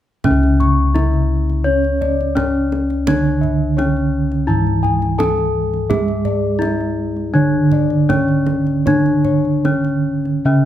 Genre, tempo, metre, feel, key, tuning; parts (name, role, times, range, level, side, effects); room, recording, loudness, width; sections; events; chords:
Javanese gamelan; 84 BPM; 4/4; uneven beats; C# pelog; A4 = 440 Hz
gamelan-type bronze metallophone; melody; 0.2-10.7 s; C#4 to C#5; -19 LUFS; left 3 dB
gamelan-type bronze metallophone; accompaniment; 0.2-10.7 s; C#3 to C#4; -20 LUFS; right 4 dB
gamelan-type bossed gongs; arpeggios; 0.2-10.7 s; C#5 to C#6; -25 LUFS; left 2 dB
kendang; percussion; 0.2-10.4 s; -26 LUFS; right 4 dB
gamelan-type bossed gongs; bass; 0.3-10.7 s; C#2 to G#4-30c; -19 LUFS; equal
light reverb; close, detailed microphones; -14 LUFS; side -11 dB against mid
0.2-10.7 A section